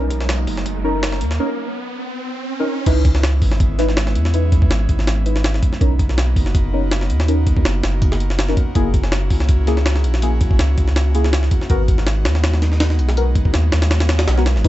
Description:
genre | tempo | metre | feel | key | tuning
drum and bass, jungle | 163 BPM | 4/4 | swing 54% on 16ths | C# dorian | A4 = 441 Hz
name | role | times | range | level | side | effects
airy breathy pad | sustained chords | 0.0-14.7 s | F#3 to F#4 | -28 LUFS | right 1 dB | chorus
deep mellow chord stab | stabs | 0.0-14.7 s | A#3 to B4 | -24 LUFS | left 1 dB | chorus, phaser, dub echo
soft dub sub bass | bass | 0.0-14.7 s | F#1 to E2 | -17 LUFS | equal | none
riser and swell | sound effects | 0.0-2.9, 14.1-14.6 s | none | -28 LUFS | right 2 dB | none
jungle sampler-style drum kit | drums | 0.1-14.7 s | crash cymbal, hi-hat, kick drum, snare drum | -18 LUFS | equal | high-pass filter on kick, small room ambience, high-pass filter on hats, high-pass filter on snare, high-pass filter on cymbals
room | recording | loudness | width
little or no reverb | dark, warm production, nothing above 8.0 kHz | -15 LUFS | side -15 dB against mid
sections
0.0-2.9 A section; 2.9-14.7 B section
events
build-up 0.0-2.9; riser 0.0-2.9; break 1.4-2.9; drop 2.9-14.7; swell 14.1-14.6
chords
0.0 Bmaj7; 2.9 C#m7; 5.8 Bmaj7; 8.8 F#7; 11.7 G#m7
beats
0.29 0.66 1.03 | 1.40 1.76 2.13 2.50 | 2.87 3.23 3.60 3.97 | 4.34 4.71 5.08 5.44 | 5.81 6.18 6.55 6.92 | 7.28 7.65 8.02 8.39 | 8.76 9.12 9.49 9.86 | 10.23 10.60 10.96 11.33 | 11.70 12.07 12.44 12.81 | 13.17 13.54 13.91 14.28 | 14.65

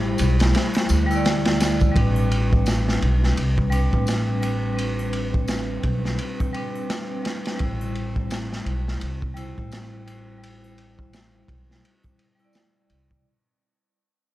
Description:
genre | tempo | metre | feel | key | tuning
trip hop | 85 BPM | 4/4 | swing 59% on 16ths | A minor | A4 = 441 Hz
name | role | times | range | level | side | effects
felt-muted upright piano | melody | 0.0-1.2 s | none | barely audible | none | none
vibraphone with hard mallets | accompaniment | 0.0-13.3 s | G3 to D5 | -27 LUFS | left 1 dB | tremolo, tape echo
warbly tape-like pad | sustained chords | 0.0-1.9 s | E4 to B5 | -36 LUFS | right 1 dB | chorus, built-in reverb, vintage 12-bit sampler grit
upright bass | bass | 0.0-13.2 s | A1 to D2 | -23 LUFS | equal | none
crunchy breakbeat drum kit | drums | 0.2-13.2 s | kick drum, ride cymbal, snare drum | -25 LUFS | equal | none
tambourine and triangle | percussion | 0.2-12.7 s | none | -42 LUFS | left 2 dB | none
bowed-like drone | texture | 3.5-13.3 s | C4 | -43 LUFS | right 3 dB | none
room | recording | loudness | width
little or no reverb | dark, warm production | -20 LUFS | side -16 dB against mid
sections
0.0-1.9 A section; 1.9-13.2 B section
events
fade-out 1.9-13.2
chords
0.0 C/A; 1.9 Am11; 7.6 C/A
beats
0.54 1.24 | 1.95 2.66 3.36 4.07 | 4.77 5.48 6.18 6.89 | 7.60 8.30 9.01 9.71 | 10.42 11.13 11.83 12.54

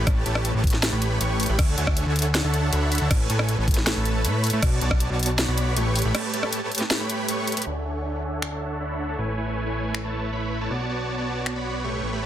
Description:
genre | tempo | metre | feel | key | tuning
future bass | 158 BPM | 4/4 | half-time | A major | A4 = 441 Hz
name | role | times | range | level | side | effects
dense compressed supersaw | riff | 0.0-12.3 s | A3 to C#6 | -26 LUFS | right 1 dB | cassette tape, sidechain pumping, low-pass filter, dub echo
fat analog bass | bass | 0.0-12.3 s | A1 to A2 | -26 LUFS | equal | sidechain pumping
electronic kick drum | drums | 0.1-5.0 s | none | -22 LUFS | equal | none
trap drum kit | drums | 0.1-11.5 s | crash cymbal, finger snaps, hi-hat, rim click, snare drum | -26 LUFS | equal | overdrive
room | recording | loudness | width
little or no reverb | dense, heavily limited modern master | -22 LUFS | side -11 dB against mid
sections
0.0-7.7 A section; 7.7-12.3 B section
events
drop 0.0-7.7; break 6.1-7.7; drum fill 7.5; filter sweep on supersaw synth 7.7-12.3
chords
0.0 A9; 1.6 Dmaj9#11; 3.1 Amaj7; 4.6 Bm7; 6.0 A9; 7.7 Dmaj9#11; 9.2 Amaj7; 10.7 Bm7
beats
| 0.07 0.45 0.83 1.21 | 1.59 1.97 2.35 2.73 | 3.11 3.49 3.87 4.25 | 4.63 5.01 5.39 5.77 | 6.15 6.53 6.91 7.29 | 7.67 8.04 8.42 8.80 | 9.18 9.56 9.94 10.32 | 10.70 11.08 11.46 11.84 | 12.22

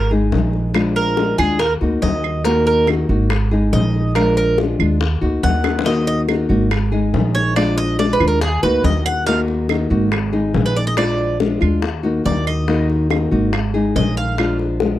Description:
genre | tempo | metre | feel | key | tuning
latin, Cuban son and guajira | 141 BPM | 4/4 | straight | Eb harmonic minor | A4 = 440 Hz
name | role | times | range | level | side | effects
Cuban tres | arpeggios | 0.0-14.6 s | Ab4 to Gb5 | -19 LUFS | right 3 dB | none
upright bass | bass | 0.0-15.0 s | Ab1 to Eb2 | -19 LUFS | right 1 dB | none
nylon-string guitar | accompaniment | 0.1-15.0 s | Eb3 to Ab4 | -20 LUFS | left 2 dB | none
bongos | percussion | 0.1-15.0 s | none | -24 LUFS | left 8 dB | none
claves | percussion | 0.8-14.6 s | none | -26 LUFS | right 29 dB | none
room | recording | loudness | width
little or no reverb | dry, close 1970s-style studio recording | -15 LUFS | side -14 dB against mid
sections
0.0-15.0 A section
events
Cuban tres solo 0.0-15.0; drum fill 5.6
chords
0.0 Absus2; 0.8 Bb7; 1.6 Ebm; 3.3 Absus2; 4.2 Bb7; 5.0 Ebm; 6.7 Absus2; 7.6 Bb7; 8.4 Ebm; 10.1 Absus2; 11.0 Bb7; 11.8 Ebm; 13.5 Absus2; 14.4 Bb7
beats
0.33 | 0.75 1.18 1.60 2.03 | 2.45 2.88 3.31 3.73 | 4.16 4.58 5.01 5.44 | 5.86 6.29 6.71 7.14 | 7.57 7.99 8.42 8.85 | 9.27 9.70 10.12 10.55 | 10.98 11.40 11.83 12.26 | 12.68 13.11 13.53 13.96 | 14.38 14.81

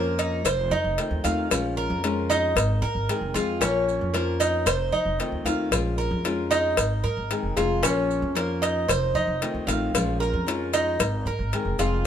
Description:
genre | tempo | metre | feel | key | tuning
latin, Cuban son and guajira | 114 BPM | 4/4 | straight | Bb minor | A4 = 441 Hz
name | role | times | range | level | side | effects
nylon-string guitar | accompaniment | 0.0-12.1 s | Eb3 to C5 | -28 LUFS | left 4 dB | none
Cuban tres | arpeggios | 0.0-12.0 s | Db4 to F5 | -26 LUFS | right 2 dB | none
upright bass | bass | 0.0-12.0 s | F1 to Ab2 | -28 LUFS | right 1 dB | none
cowbell | percussion | 0.2-12.1 s | none | -28 LUFS | left 6 dB | none
maracas | percussion | 0.2-12.1 s | none | -35 LUFS | right 8 dB | none
room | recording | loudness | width
light reverb | minimal, uncompressed stereo recording | -22 LUFS | side -9 dB against mid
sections
0.0-12.1 A section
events
none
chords
0.5 F7; 1.5 Bbm7; 2.6 Abadd9; 3.6 Bbmadd9; 4.7 F7; 5.7 Bbm7; 6.8 Abadd9; 7.8 Bbmadd9; 8.9 F7; 9.9 Bbm7; 11.0 Abadd9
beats
0.45 0.98 | 1.51 2.04 2.56 3.09 | 3.62 4.14 4.67 5.20 | 5.72 6.25 6.78 7.31 | 7.83 8.36 8.89 9.42 | 9.94 10.47 11.00 11.53 | 12.05

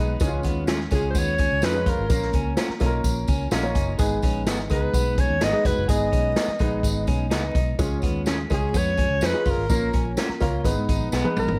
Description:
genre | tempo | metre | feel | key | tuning
uptempo 1960s-style soul | 126 BPM | 4/4 | straight | G# dorian | A4 = 441 Hz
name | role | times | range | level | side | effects
warm baby grand piano | accompaniment | 0.0-11.5 s | G#3 to G#5 | -31 LUFS | equal | none
mellow tonewheel organ | sustained chords | 0.0-11.6 s | G#3 to E#4 | -37 LUFS | equal | none
electric guitar through a small old amp | riff | 0.0-11.6 s | A#3 to G#4 | -35 LUFS | equal | none
vintage muted fingered electric bass | bass | 0.0-11.6 s | E#1 to G#2 | -30 LUFS | equal | none
swinging big-band drum kit | drums | 0.2-11.6 s | hi-hat, kick drum, snare drum, toms | -27 LUFS | equal | none
tambourine | percussion | 0.2-11.5 s | none | -41 LUFS | equal | none
electric guitar through a small old amp | stabs | 0.7-11.2 s | B3 to A#4 | -34 LUFS | equal | spring reverb
warm alto saxophone | melody | 0.9-11.6 s | G#4 to D#5 | -29 LUFS | equal | analog delay
room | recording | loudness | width
light reverb, small room ambience | vinyl crackle | -23 LUFS | mono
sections
0.0-11.6 A section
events
grand piano fill 3.3-4.0; drum fill 11.1-11.6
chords
0.2 C#; 2.1 A#m; 4.0 G#m; 7.8 C#; 9.7 A#m; 10.6 G#m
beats
| 0.21 0.69 1.16 1.63 | 2.10 2.58 3.05 3.52 | 4.00 4.47 4.95 5.42 | 5.89 6.37 6.84 7.32 | 7.79 8.27 8.74 9.22 | 9.69 10.17 10.64 11.12

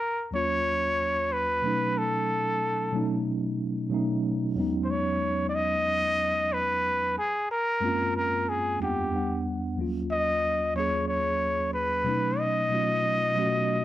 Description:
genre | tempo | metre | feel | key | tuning
R&B | 92 BPM | 4/4 | swing 57% on 16ths | unclear | A4 = 442 Hz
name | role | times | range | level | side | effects
trumpet with straight mute | melody | 0.0-13.8 s | G4 to D#5 | -26 LUFS | equal | none
mellow tine electric piano | accompaniment | 0.3-13.8 s | Eb2 to Gb5 | -28 LUFS | equal | medium stereo tremolo
room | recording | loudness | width
moderate studio reverb, RT60 0.8 s | dark, warm production | -24 LUFS | side -14 dB against mid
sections
0.0-13.8 A section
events
none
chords
0.0 Ebm9; 1.6 B7; 4.6 Emaj13; 7.2 Gbmaj9#11; 9.1 Em9; 9.8 Ebm9; 12.1 B7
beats
0.64 1.29 | 1.95 2.60 3.25 3.90 | 4.55 5.21 5.86 6.51 | 7.16 7.82 8.47 9.12 | 9.77 10.42 11.08 11.73 | 12.38 13.03 13.69

